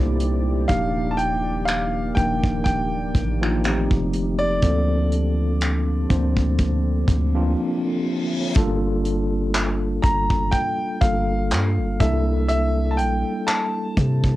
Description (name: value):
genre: contemporary R&B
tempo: 61 BPM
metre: 4/4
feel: swing 54% on 16ths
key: G minor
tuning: A4 = 440 Hz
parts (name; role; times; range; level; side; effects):
- tine electric piano; accompaniment; 0.0-14.4 s; F3 to C5; -24 LUFS; equal; fast stereo tremolo, cassette tape
- deep dark ambient pad; sustained chords; 0.0-8.5 s; Bb2 to D5; -34 LUFS; right 1 dB; chorus, built-in reverb, cassette tape
- long sustained 808-style bass; bass; 0.0-14.4 s; D1 to C3; -22 LUFS; equal; none
- modern studio drum kit; drums; 0.2-14.4 s; finger snaps, handclaps, hi-hat, kick drum; -24 LUFS; equal; cassette tape
- clear baby grand piano; melody; 0.7-14.4 s; D5 to Bb5; -26 LUFS; equal; cassette tape
- reverse cymbal; sound effects; 7.8-8.6 s; none; -33 LUFS; left 4 dB; none
room: little or no reverb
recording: home recording on cassette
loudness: -19 LUFS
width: side -16 dB against mid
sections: 0.0-8.6 A section; 8.6-14.4 B section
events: break 7.6-8.6; reverse cymbal 7.8-8.6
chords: 0.0 C13; 0.7 Ebmaj7; 3.6 F9; 4.6 Bbmaj9/D; 8.6 Gm9; 12.0 C13